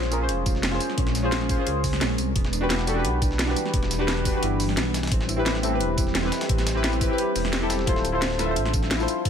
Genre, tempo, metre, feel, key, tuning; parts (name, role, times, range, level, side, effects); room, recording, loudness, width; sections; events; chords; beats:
liquid drum and bass; 174 BPM; 4/4; straight; D dorian; A4 = 441 Hz
deep mellow chord stab; accompaniment; 0.0-9.3 s; C4 to E5; -27 LUFS; left 1 dB; chorus, tape echo
ethereal airy pad; sustained chords; 0.0-9.3 s; E3 to C5; -31 LUFS; equal; ensemble chorus, built-in reverb, sidechain pumping
concert harp; arpeggios; 0.0-9.3 s; B3 to C5; -34 LUFS; right 1 dB; tape echo
dark detuned saw bass; bass; 0.0-9.3 s; D1 to Db2; -28 LUFS; equal
drum and bass drum kit; drums; 0.0-9.3 s; hi-hat, snare drum, tambourine; -29 LUFS; equal
dusty soul sampler-style drum kit; drums; 0.0-9.3 s; hi-hat, snare drum; -35 LUFS; left 1 dB; high-pass filter on hats, high-pass filter on snare
electronic kick drum; drums; 0.5-9.3 s; -26 LUFS; equal
light reverb; -21 LUFS; side -8 dB against mid
0.0-7.9 A section; 7.9-9.3 A section
drop 0.0-7.9, 7.9-9.3; kick drops out 7.2-7.9
0.0 Bbm7; 2.4 Em7; 5.1 Am7; 7.9 Dm7
0.29 0.63 | 0.98 1.32 1.67 2.01 | 2.36 2.70 3.05 3.39 | 3.74 4.08 4.43 4.77 | 5.12 5.46 5.80 6.15 | 6.50 6.84 7.18 7.53 | 7.87 8.22 8.56 8.91 | 9.25